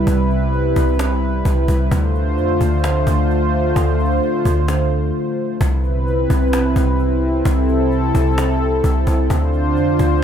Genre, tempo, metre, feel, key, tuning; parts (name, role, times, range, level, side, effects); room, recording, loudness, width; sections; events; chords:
hip hop, atmospheric cloud-rap; 130 BPM; 4/4; half-time; C major; A4 = 440 Hz
warm analog pad; sustained chords; 0.0-10.2 s; C3 to C5; -18 LUFS; equal; chorus
warm 808-style bass; bass; 0.0-10.2 s; B1 to F2; -18 LUFS; equal
cajon; drums; 0.1-10.2 s; -26 LUFS; equal
light reverb; -15 LUFS; side -8 dB against mid
0.0-10.2 A section
break 5.1-5.6
0.0 Cmaj7; 1.9 Dm7; 5.6 Cmaj7; 9.3 Dm7